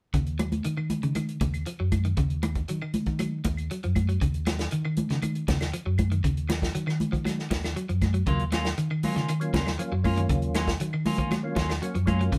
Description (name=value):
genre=afrobeat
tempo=118 BPM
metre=4/4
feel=straight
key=Eb minor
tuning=A4 = 440 Hz
part: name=electric guitar at the edge of break-up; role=arpeggios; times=0.1-12.4 s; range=Db3 to Gb3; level=-34 LUFS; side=equal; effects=none
part: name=fingered electric bass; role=bass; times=0.1-12.4 s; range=Eb2 to Eb3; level=-31 LUFS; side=equal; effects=none
part: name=warm soul drum kit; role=drums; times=0.1-12.4 s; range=hi-hat, kick drum, snare drum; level=-33 LUFS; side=equal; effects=none
part: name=claves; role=percussion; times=0.4-12.2 s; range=none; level=-44 LUFS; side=equal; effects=none
part: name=congas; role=percussion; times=0.4-12.2 s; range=none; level=-33 LUFS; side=equal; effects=none
part: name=clean electric guitar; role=stabs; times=8.3-12.2 s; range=Gb3 to F4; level=-34 LUFS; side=equal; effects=none
part: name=percussive tonewheel organ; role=accompaniment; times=9.4-12.4 s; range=Gb3 to Gb4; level=-35 LUFS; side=equal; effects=slow rotary speaker, chorus vibrato
room=moderate studio reverb, RT60 0.6 s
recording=band playing live in one room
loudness=-27 LUFS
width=mono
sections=0.1-12.4 A section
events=none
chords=0.1 Ebm9